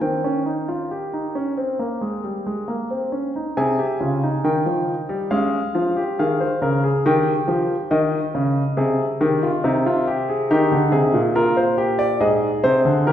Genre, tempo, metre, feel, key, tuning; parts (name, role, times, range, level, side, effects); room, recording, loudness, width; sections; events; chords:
classical, baroque-style 3-part fugue for grand piano; 69 BPM; 4/4; straight; Ab major; A4 = 441 Hz
warm concert grand piano; solo; 0.0-13.1 s; Ab2 to Ab5; -18 LUFS; equal
wet recital hall reverb, RT60 1.7 s; heard from further back in the room, nothing above 10.7 kHz; -18 LUFS; side -10 dB against mid
0.0-3.5 A section; 3.5-13.1 B section
0.0 Eb; 3.5 Ab/C; 5.3 Bbm7 (rootless); 7.0 Eb7; 8.8 Ab/C; 10.5 Eb; 12.2 Fm7/Ab (rootless)